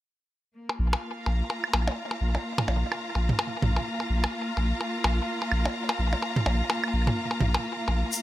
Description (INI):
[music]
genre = minimal techno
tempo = 127 BPM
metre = 4/4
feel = swing 59% on 16ths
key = unclear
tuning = A4 = 439 Hz
[part]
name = rich studio string section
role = texture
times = 0.6-8.2 s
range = Bb3 to Bb5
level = -31 LUFS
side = equal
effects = none
[part]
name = electronic percussion blips, claves and toms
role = percussion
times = 0.7-8.0 s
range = none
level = -28 LUFS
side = right 1 dB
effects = analog delay
[part]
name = saturated sub bass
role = bass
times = 0.8-8.0 s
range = Bb1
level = -25 LUFS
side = equal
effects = none
[part]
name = tube shaker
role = percussion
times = 8.1-8.2 s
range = none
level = -28 LUFS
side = left 4 dB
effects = none
[sound]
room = light reverb, studio reverb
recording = echo-heavy mix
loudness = -25 LUFS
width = side -15 dB against mid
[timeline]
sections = 0.6-8.2 A section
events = none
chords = 0.6 Bb5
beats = | 0.56 1.03 1.50 1.97 | 2.44 2.92 3.39 3.86 | 4.33 4.81 5.28 5.75 | 6.22 6.70 7.17 7.64 | 8.11